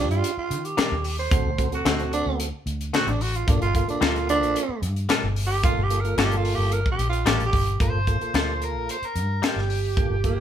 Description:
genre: straight-eighth soul blues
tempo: 111 BPM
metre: 4/4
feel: straight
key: G minor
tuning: A4 = 439 Hz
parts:
  - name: growling tenor saxophone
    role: second line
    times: 0.0-10.4 s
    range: Bb3 to C5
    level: -26 LUFS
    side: right 3 dB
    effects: none
  - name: tonewheel organ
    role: accompaniment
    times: 0.0-10.4 s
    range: Bb3 to A4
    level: -31 LUFS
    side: right 3 dB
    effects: overdrive, slow rotary speaker
  - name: vintage muted fingered electric bass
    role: bass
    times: 0.0-10.4 s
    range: G1 to Eb3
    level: -26 LUFS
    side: equal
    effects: none
  - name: tight funk drum kit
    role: drums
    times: 0.1-10.4 s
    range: hi-hat, kick drum, snare drum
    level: -25 LUFS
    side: left 1 dB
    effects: none
  - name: direct-recorded clean electric guitar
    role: stabs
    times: 0.8-9.6 s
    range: D3 to A4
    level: -27 LUFS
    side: left 4 dB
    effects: none
  - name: overdriven electric guitar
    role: melody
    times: 7.8-10.4 s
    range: G4 to C5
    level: -29 LUFS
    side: right 3 dB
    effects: none
room: light reverb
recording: band playing live in one room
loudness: -21 LUFS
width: side -9 dB against mid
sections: 0.0-7.8 A section; 7.8-10.4 B section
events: tenor saxophone solo 0.0-7.8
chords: 0.0 Ebmaj7; 1.3 D7; 3.5 Gm9

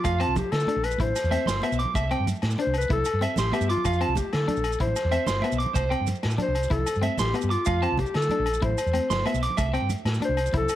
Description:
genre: highlife guitar band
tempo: 126 BPM (dotted quarters)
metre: 12/8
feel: straight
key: C major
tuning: A4 = 439 Hz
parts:
  - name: mellow clarinet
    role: melody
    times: 0.0-10.8 s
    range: F4 to C5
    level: -28 LUFS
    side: left 2 dB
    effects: tape echo, plate reverb
  - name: electric guitar at the edge of break-up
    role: arpeggios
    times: 0.0-9.9 s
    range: C5 to D6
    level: -29 LUFS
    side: right 5 dB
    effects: tape echo, plate reverb
  - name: vintage drum kit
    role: drums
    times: 0.0-10.8 s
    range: hi-hat, kick drum, snare drum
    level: -32 LUFS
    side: equal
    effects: none
  - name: agogo bells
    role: percussion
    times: 0.0-10.8 s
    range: none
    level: -38 LUFS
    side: left 6 dB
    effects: none
  - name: congas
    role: percussion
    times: 0.0-10.7 s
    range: none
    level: -34 LUFS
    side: right 4 dB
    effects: none
  - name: hollow-body short-scale fingered electric bass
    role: bass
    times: 0.1-10.7 s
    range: G1 to D3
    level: -27 LUFS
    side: equal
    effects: none
  - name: maracas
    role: percussion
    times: 0.1-10.8 s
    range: none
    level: -39 LUFS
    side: right 12 dB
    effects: none
  - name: electric guitar at the edge of break-up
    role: accompaniment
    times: 0.2-10.7 s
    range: B3 to E4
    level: -32 LUFS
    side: left 6 dB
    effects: none
room: moderate studio reverb, RT60 0.6 s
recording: none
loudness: -22 LUFS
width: side -13 dB against mid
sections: 0.0-10.8 A section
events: none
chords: 0.0 F6; 1.0 Am; 1.9 C; 3.9 F6; 4.8 Am; 5.8 C; 7.7 F6; 8.6 Am; 9.6 C

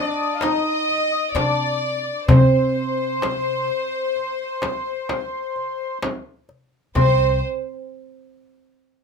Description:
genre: Arabic maqam ensemble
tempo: 128 BPM (eighths)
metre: 10/8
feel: straight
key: C minor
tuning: A4 = 441 Hz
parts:
  - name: oud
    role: melody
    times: 0.0-7.4 s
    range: C4 to Eb4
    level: -24 LUFS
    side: right 5 dB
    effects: none
  - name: mellow accordion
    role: second line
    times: 0.0-7.4 s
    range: C5 to F5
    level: -26 LUFS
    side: left 4 dB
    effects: none
  - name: warm studio violin section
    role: second line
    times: 0.0-7.4 s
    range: C5 to Eb5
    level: -26 LUFS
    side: left 1 dB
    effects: none
  - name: darbuka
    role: percussion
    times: 0.4-7.4 s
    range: none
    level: -20 LUFS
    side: left 2 dB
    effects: none
  - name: frame drum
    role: percussion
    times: 0.4-7.4 s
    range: none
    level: -24 LUFS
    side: equal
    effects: none
  - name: upright bass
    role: bass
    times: 1.3-7.4 s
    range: C2 to C3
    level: -22 LUFS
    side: left 1 dB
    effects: none
room: moderate studio reverb, RT60 0.5 s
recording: minimal, uncompressed stereo recording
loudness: -19 LUFS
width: side -6 dB against mid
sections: 0.0-7.0 A section; 7.0-9.0 B section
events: none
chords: none

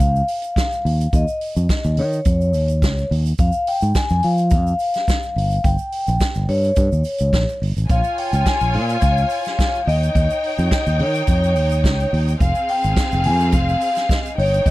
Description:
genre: disco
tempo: 106 BPM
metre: 4/4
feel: straight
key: unclear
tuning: A4 = 439 Hz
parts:
  - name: vibraphone with soft mallets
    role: melody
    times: 0.0-14.7 s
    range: Db5 to Ab5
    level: -22 LUFS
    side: left 1 dB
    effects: slapback echo
  - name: fingered electric bass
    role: bass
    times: 0.0-14.7 s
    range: F1 to F3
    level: -18 LUFS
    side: equal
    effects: none
  - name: vintage drum kit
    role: drums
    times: 0.0-14.7 s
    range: hi-hat, kick drum, snare drum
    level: -21 LUFS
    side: equal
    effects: none
  - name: tube shaker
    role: percussion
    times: 0.0-14.7 s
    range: none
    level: -41 LUFS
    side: right 23 dB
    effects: none
  - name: clear studio string section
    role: second line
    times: 7.9-14.7 s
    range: C4 to Ab5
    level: -25 LUFS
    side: right 1 dB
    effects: none
room: little or no reverb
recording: dry, close 1970s-style studio recording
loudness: -16 LUFS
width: side -17 dB against mid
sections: 0.0-14.7 A section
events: none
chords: 0.0 Bbm (rootless); 0.8 Dbadd9; 3.4 N.C.; 5.4 Eb7/G (rootless); 7.9 Bbm7; 9.9 Eb7; 12.4 Fm

